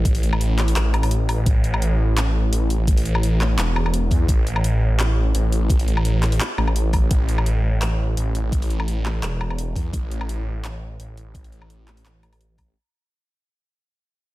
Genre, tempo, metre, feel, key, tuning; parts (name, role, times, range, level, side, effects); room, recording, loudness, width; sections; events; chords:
half-time drum and bass; 170 BPM; 4/4; swing 53% on 16ths, half-time; A4 = 440 Hz
phased detuned saw bass; bass; 0.0-12.7 s; E1 to E2; -20 LUFS; equal; phaser
drum and bass drum kit; drums; 0.1-12.7 s; handclaps, hi-hat, woodblock; -28 LUFS; left 1 dB; overdrive, small room ambience
electronic kick drum; drums; 0.1-12.7 s; -19 LUFS; equal; overdrive, small room ambience
little or no reverb; dense, heavily limited modern master; -18 LUFS; side -17 dB against mid
0.0-12.8 A section
drop 0.0-12.8; kick drops out 0.8-1.5; fade-out 7.1-12.8